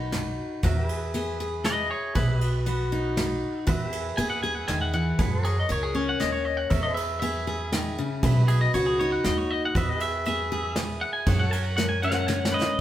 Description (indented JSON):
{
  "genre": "honky-tonk and classic country",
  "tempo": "118 BPM",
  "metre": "3/4",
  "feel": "straight",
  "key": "B major",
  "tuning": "A4 = 439 Hz",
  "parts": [
    { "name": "twangy electric guitar", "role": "melody", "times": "0.0-12.8 s", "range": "G#4 to G#5", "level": "-30 LUFS", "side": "left 1 dB", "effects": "none" },
    { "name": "picked steel-string acoustic guitar", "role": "accompaniment", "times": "0.0-12.8 s", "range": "F#2 to A#4", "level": "-29 LUFS", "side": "left 2 dB", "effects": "none" },
    { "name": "upright bass", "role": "bass", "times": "0.0-12.5 s", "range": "B1 to F#2", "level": "-28 LUFS", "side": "equal", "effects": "none" },
    { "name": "soft brush drum kit", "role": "drums", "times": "0.1-12.8 s", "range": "hi-hat, kick drum, ride cymbal, snare drum", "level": "-30 LUFS", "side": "right 1 dB", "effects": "none" },
    { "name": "pedal steel guitar", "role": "sustained chords", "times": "0.6-12.8 s", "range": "F#4 to F#5", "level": "-34 LUFS", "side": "right 2 dB", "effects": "none" },
    { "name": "pedal steel guitar", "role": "second line", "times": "12.0-12.8 s", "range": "D#5 to F#5", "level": "-28 LUFS", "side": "right 2 dB", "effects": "none" }
  ],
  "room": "wet stone room reverb, RT60 1.3 s",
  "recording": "band playing live in one room",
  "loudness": "-23 LUFS",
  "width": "side -12 dB against mid",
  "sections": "0.0-12.8 A section",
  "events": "clean electric guitar solo 0.0-12.8; drum fill 11.8-12.8",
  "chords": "0.0 B; 0.6 E; 2.2 B; 3.7 E; 5.2 F#; 6.7 E; 8.2 B; 9.7 E; 11.3 F#"
}